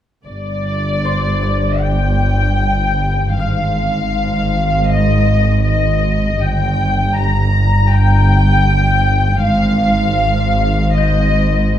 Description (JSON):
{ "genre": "cinematic, suspense film score", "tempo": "79 BPM", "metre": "4/4", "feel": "straight", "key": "G phrygian", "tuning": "A4 = 439 Hz", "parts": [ { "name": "muted studio violin section", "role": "melody", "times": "0.3-11.7 s", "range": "D5 to Bb5", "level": "-18 LUFS", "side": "left 2 dB", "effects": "none" }, { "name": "muted studio cello section", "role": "bass", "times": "0.3-11.8 s", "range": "G2 to Ab2", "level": "-19 LUFS", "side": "right 1 dB", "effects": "none" }, { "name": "muted studio double bass section", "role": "bass", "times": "0.3-11.8 s", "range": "G1 to Ab1", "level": "-19 LUFS", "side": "right 3 dB", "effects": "none" }, { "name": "deep rumbling drone", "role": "drone", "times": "1.0-11.8 s", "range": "G1 to Ab1", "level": "-19 LUFS", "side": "left 1 dB", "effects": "built-in reverb" }, { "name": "concert harp", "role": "texture", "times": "1.0-11.8 s", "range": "C5 to Bb6", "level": "-27 LUFS", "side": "left 7 dB", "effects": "none" } ], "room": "moderate scoring stage reverb, RT60 1.6 s", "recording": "dark, warm production", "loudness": "-12 LUFS", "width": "side -11 dB against mid", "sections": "0.3-11.8 A section", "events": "none", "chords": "0.3 G5; 3.4 Ab; 6.4 Gm; 9.4 Ab5", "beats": "| 0.27 1.04 1.83 2.61 | 3.38 4.13 4.90 5.66 | 6.42 7.19 7.94 8.69 | 9.45 10.20 10.96 11.72" }